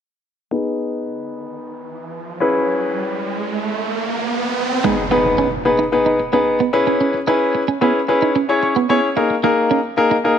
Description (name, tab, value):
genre	pop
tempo	111 BPM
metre	4/4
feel	straight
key	G# minor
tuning	A4 = 440 Hz
part	clear baby grand piano	accompaniment	0.5-10.4 s	A#3 to C#6	-17 LUFS	left 2 dB	low-pass filter
part	riser and impact	sound effects	1.7-7.0 s	none	-24 LUFS	right 2 dB	none
part	clean electric guitar	riff	4.8-10.2 s	G#3 to D#4	-21 LUFS	right 8 dB	analog chorus
room	moderate lush hall reverb, RT60 2.5 s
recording	none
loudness	-16 LUFS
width	side -8 dB against mid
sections	0.5-4.8 A section; 4.8-10.4 B section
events	filter sweep on grand piano 0.5-4.8; riser 1.7-4.8; impact 4.8-7.0; grand piano fill 8.4-9.2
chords	0.5 G#m; 2.4 C#m7; 4.8 G#m; 6.7 C#m7; 9.2 D#sus4